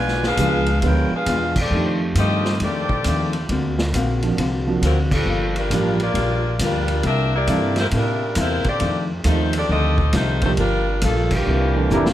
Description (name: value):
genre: jazz, big band swing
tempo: 135 BPM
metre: 4/4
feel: swing 65% on 8ths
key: unclear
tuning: A4 = 440 Hz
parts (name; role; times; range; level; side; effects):
- bright saxophone section; melody; 0.0-12.1 s; E3 to Ab5; -23 LUFS; left 1 dB; none
- archtop guitar, miked and amplified; accompaniment; 0.0-12.1 s; F2 to A4; -26 LUFS; left 3 dB; none
- upright bass; bass; 0.0-12.1 s; F1 to A2; -21 LUFS; equal; none
- vintage drum kit; drums; 0.1-12.1 s; crash cymbal, hi-hat, kick drum, ride cymbal, snare drum; -26 LUFS; equal; none
- warm grand piano; accompaniment; 0.4-12.1 s; E3 to B4; -25 LUFS; right 4 dB; none
- bright trombone section; second line; 11.3-12.1 s; Bb2 to Bb3; -25 LUFS; right 3 dB; none
- warm trumpet section; melody; 11.9-12.1 s; G3 to Bb4; -20 LUFS; right 2 dB; none
room: moderate recital hall reverb, RT60 1.4 s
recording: none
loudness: -17 LUFS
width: side -12 dB against mid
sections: 0.0-12.1 A section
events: band accent 1.5, 5.0, 11.2; drum fill 11.9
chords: 0.0 Bdim7; 1.7 F13; 3.5 D7alt; 5.3 Gm7; 7.0 C13; 8.8 F13; 10.6 Gm7; 11.5 C13